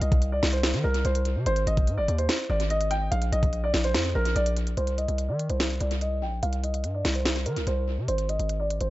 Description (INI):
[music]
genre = hip hop, trap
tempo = 145 BPM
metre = 4/4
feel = half-time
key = C minor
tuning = A4 = 440 Hz
[part]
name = dark grand piano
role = melody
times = 0.0-8.9 s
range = Bb4 to G5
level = -29 LUFS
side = right 1 dB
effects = low-pass filter, tape echo
[part]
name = distorted 808-style bass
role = bass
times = 0.0-8.9 s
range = Ab1 to Eb3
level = -26 LUFS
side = equal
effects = distortion
[part]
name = trap drum kit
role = drums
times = 0.0-8.9 s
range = hi-hat, kick drum, snare drum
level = -28 LUFS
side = equal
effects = tape echo
[sound]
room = little or no reverb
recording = echo-heavy mix, nothing above 7.8 kHz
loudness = -24 LUFS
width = side -16 dB against mid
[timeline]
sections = 0.0-4.8 A section; 4.8-8.9 B section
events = none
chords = 0.0 N.C.; 1.5 Ab5; 3.1 Bb5; 4.8 Cm; 8.1 Ab(#11)